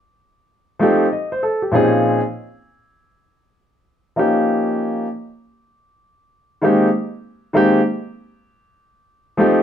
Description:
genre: hip hop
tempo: 98 BPM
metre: 4/4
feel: swing 64% on 16ths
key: Bb dorian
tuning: A4 = 436 Hz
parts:
  - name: warm grand piano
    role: solo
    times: 0.8-9.6 s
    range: Bb2 to Eb5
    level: -15 LUFS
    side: equal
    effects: none
room: moderate studio reverb, RT60 0.8 s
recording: band playing live in one room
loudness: -16 LUFS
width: side -9 dB against mid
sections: 0.0-9.6 A section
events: none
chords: 0.0 F9; 1.7 Bbm11; 4.2 Eb9; 6.6 Abmaj9/Eb; 9.1 F9

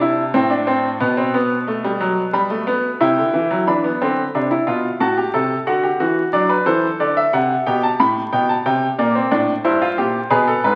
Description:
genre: classical, baroque-style 3-part fugue for grand piano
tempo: 90 BPM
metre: 4/4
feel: straight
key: unclear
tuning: A4 = 442 Hz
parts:
  - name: bright baby grand piano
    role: solo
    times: 0.0-10.8 s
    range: G2 to B5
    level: -18 LUFS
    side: equal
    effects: none
room: wet recital hall reverb, RT60 1.4 s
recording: very old 78 rpm record, vinyl crackle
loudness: -18 LUFS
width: mono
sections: 0.0-3.7 A section; 3.7-10.8 B section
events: none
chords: 0.0 Am/C; 1.0 B5; 2.3 Em/B; 3.7 E5; 5.0 Am; 6.3 D7; 7.7 G; 9.0 Gm

